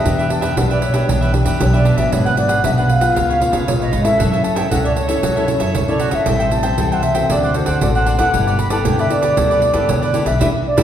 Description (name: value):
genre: samba and choro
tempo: 116 BPM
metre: 4/4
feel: straight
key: unclear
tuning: A4 = 440 Hz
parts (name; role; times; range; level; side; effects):
- mellow wooden flute; melody; 0.0-10.8 s; C5 to B5; -19 LUFS; equal; none
- cavaquinho; accompaniment; 0.0-10.8 s; D4 to G5; -23 LUFS; right 2 dB; none
- nylon-string guitar; accompaniment; 0.0-10.8 s; G#2 to A4; -22 LUFS; left 3 dB; none
- upright bass; bass; 0.0-10.8 s; G1 to F#2; -20 LUFS; equal; none
- pandeiro; percussion; 0.1-10.8 s; none; -21 LUFS; right 3 dB; none
room: wet recital hall reverb, RT60 1.4 s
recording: recorded in a church or concert hall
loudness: -14 LUFS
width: side -10 dB against mid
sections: 0.0-10.8 A section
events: band accent 10.4-10.8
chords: 0.1 Em7; 2.1 G#m7b5; 3.2 C#7; 4.2 F#m7; 6.3 Am7; 7.3 D7; 8.3 G69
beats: | 0.05 0.57 1.09 1.60 | 2.12 2.64 3.16 3.68 | 4.19 4.71 5.23 5.75 | 6.27 6.78 7.30 7.82 | 8.34 8.85 9.37 9.89 | 10.41